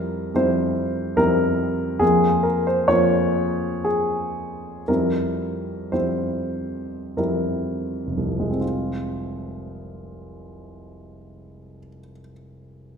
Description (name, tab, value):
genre	classical, romantic character piece for solo piano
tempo	39-73 BPM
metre	3/4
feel	rubato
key	F minor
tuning	A4 = 440 Hz
part	warm grand piano	solo	0.0-13.0 s	F1 to Db5	-21 LUFS	equal	none
room	wet scoring stage reverb, RT60 2.0 s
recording	minimal, uncompressed stereo recording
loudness	-20 LUFS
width	side -6 dB against mid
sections	0.0-8.6 A section; 8.6-12.4 B section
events	slowing down 0.8-8.6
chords	0.0 C7/F; 2.0 Bbm/F; 4.9 C7/F; 8.6 Fm